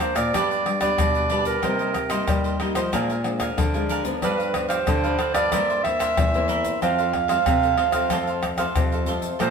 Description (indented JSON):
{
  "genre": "samba and choro",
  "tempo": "93 BPM",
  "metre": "4/4",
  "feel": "straight",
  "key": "unclear",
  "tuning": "A4 = 441 Hz",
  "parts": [
    { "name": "bright clarinet", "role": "melody", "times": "0.0-9.5 s", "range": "Bb4 to F5", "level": "-23 LUFS", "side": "right 5 dB", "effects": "none" },
    { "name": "cavaquinho", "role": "accompaniment", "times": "0.0-9.5 s", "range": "D4 to Bb5", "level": "-29 LUFS", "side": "right 4 dB", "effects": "none" },
    { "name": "nylon-string guitar", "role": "accompaniment", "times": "0.0-9.5 s", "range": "F2 to Eb4", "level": "-29 LUFS", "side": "left 4 dB", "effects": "none" },
    { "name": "egg shaker, pandeiro, tamborim and surdo", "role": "percussion", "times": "0.0-9.5 s", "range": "none", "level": "-26 LUFS", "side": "left 2 dB", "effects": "none" },
    { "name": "nylon-string guitar", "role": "bass", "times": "0.2-9.5 s", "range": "E2 to G3", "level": "-28 LUFS", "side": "left 1 dB", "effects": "none" }
  ],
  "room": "wet stone room reverb, RT60 1.2 s",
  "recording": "band playing live in one room",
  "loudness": "-20 LUFS",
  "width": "side -6 dB against mid",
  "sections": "0.0-9.5 A section",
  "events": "none",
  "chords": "0.3 G; 1.6 Cm7; 2.9 Bb7; 4.2 G7; 5.5 C7/G; 6.8 F"
}